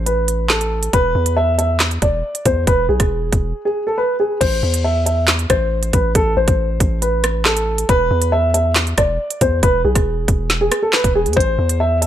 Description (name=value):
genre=hip hop, drill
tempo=138 BPM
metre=4/4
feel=half-time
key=A harmonic minor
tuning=A4 = 440 Hz
part: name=dark concert grand piano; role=melody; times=0.0-12.1 s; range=G#4 to E5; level=-18 LUFS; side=equal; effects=none
part: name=long sustained 808-style bass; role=bass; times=0.0-12.1 s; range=E1 to E2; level=-19 LUFS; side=equal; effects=none
part: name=drill drum kit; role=drums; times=0.1-12.1 s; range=crash cymbal, handclaps, hi-hat, kick drum, rim click, snare drum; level=-17 LUFS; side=equal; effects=none
room=little or no reverb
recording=none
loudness=-14 LUFS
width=side -11 dB against mid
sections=0.0-4.4 A section; 4.4-12.1 B section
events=break 3.5-4.4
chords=0.0 N.C.; 0.9 E; 4.4 Am; 7.9 E; 11.4 Am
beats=0.06 0.50 | 0.93 1.37 1.80 2.24 | 2.67 3.11 3.54 3.98 | 4.41 4.85 5.28 5.72 | 6.15 6.59 7.02 7.46 | 7.89 8.32 8.76 9.19 | 9.63 10.06 10.50 10.93 | 11.37 11.80